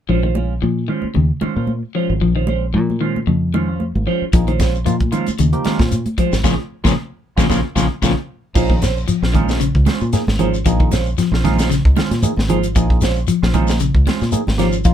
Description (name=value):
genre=afrobeat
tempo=114 BPM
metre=4/4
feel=swing 54% on 16ths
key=Bb minor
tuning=A4 = 440 Hz
part: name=electric guitar at the edge of break-up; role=arpeggios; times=0.1-14.9 s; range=Bb2 to F3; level=-21 LUFS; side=left 6 dB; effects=none
part: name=semi-hollow electric guitar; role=stabs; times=0.1-14.8 s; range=Ab3 to C5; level=-23 LUFS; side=right 8 dB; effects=phaser
part: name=fingered electric bass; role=bass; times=0.1-14.9 s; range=Ab1 to Bb2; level=-18 LUFS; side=equal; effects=none
part: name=congas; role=percussion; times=0.2-14.7 s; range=none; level=-24 LUFS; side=right 2 dB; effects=none
part: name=barky tine electric piano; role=accompaniment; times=4.3-14.9 s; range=F3 to Ab4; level=-24 LUFS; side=right 3 dB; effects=overdrive, phaser
part: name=tight funk drum kit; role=drums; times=4.3-14.9 s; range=crash cymbal, hi-hat, kick drum, snare drum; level=-19 LUFS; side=equal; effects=none
part: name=shekere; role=percussion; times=4.3-14.9 s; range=none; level=-24 LUFS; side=left 2 dB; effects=none
room=light reverb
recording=band playing live in one room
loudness=-15 LUFS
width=side -10 dB against mid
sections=0.1-8.6 A section; 8.6-14.9 B section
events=band accent 6.4-8.6; drum fill 8.0-8.6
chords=0.1 Bbm9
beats=| 0.10 0.63 1.16 1.69 | 2.22 2.75 3.28 3.81 | 4.33 4.86 5.39 5.92 | 6.45 6.97 7.50 8.03 | 8.55 9.08 9.60 10.13 | 10.65 11.18 11.70 12.23 | 12.75 13.28 13.80 14.33 | 14.85